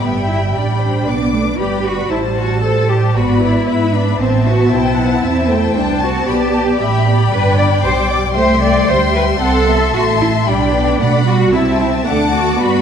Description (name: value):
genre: quick classical-period movement for string orchestra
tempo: 115 BPM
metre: 4/4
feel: straight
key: G major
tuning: A4 = 440 Hz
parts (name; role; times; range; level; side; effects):
- rich symphonic violin section; melody; 0.0-12.8 s; G5 to D6; -23 LUFS; left 6 dB; none
- rich studio violin section; second line; 0.0-12.8 s; B4 to B5; -20 LUFS; left 4 dB; none
- warm symphonic viola section; accompaniment; 0.0-12.8 s; G3 to D4; -19 LUFS; equal; none
- rich symphonic cello section; bass; 0.0-12.8 s; B3 to D5; -18 LUFS; right 1 dB; none
- rich symphonic double bass section; bass; 0.0-12.8 s; G1 to B2; -17 LUFS; right 3 dB; none
room: wet concert hall reverb, RT60 1.9 s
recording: dark, warm production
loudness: -12 LUFS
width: side -8 dB against mid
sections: 0.0-12.8 A section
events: none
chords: 0.0 G; 2.1 Am; 3.2 E7/G#; 4.2 Am; 6.3 G; 8.4 C; 10.5 G/B; 11.5 Am/C; 12.1 D